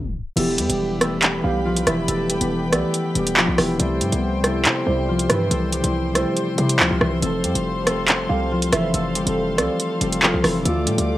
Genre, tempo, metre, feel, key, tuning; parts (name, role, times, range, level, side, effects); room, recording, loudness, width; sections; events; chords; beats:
hip hop, drill; 140 BPM; 4/4; half-time; E phrygian; A4 = 442 Hz
concert harp; melody; 0.0-11.2 s; E3 to A4; -25 LUFS; left 2 dB; cassette tape
soft electric-piano-like synth keys; accompaniment; 0.0-11.2 s; C3 to A4; -25 LUFS; left 1 dB; chorus, cassette tape
warm studio string section; sustained chords; 0.4-11.2 s; G4 to D6; -28 LUFS; equal; cassette tape
hard-hitting 808-style bass; bass; 0.4-11.2 s; E1 to C3; -25 LUFS; equal
drill drum kit; drums; 0.4-11.1 s; crash cymbal, handclaps, hi-hat, rim click; -20 LUFS; right 1 dB; cassette tape
warbly dusty pluck; second line; 1.4-10.2 s; B4 to F5; -30 LUFS; right 5 dB; chorus, cassette tape, analog delay
light reverb, digital ambience; home recording on cassette, tape stop; -18 LUFS; side -15 dB against mid
0.4-11.2 A section
break 0.0-0.4; tape stop 0.0-0.4
0.4 Em; 3.8 C; 7.2 F; 10.7 Dm
| 0.37 0.80 1.23 1.65 | 2.08 2.51 2.94 3.37 | 3.80 4.22 4.65 5.08 | 5.51 5.94 6.37 6.80 | 7.22 7.65 8.08 8.51 | 8.94 9.37 9.80 10.22 | 10.65 11.08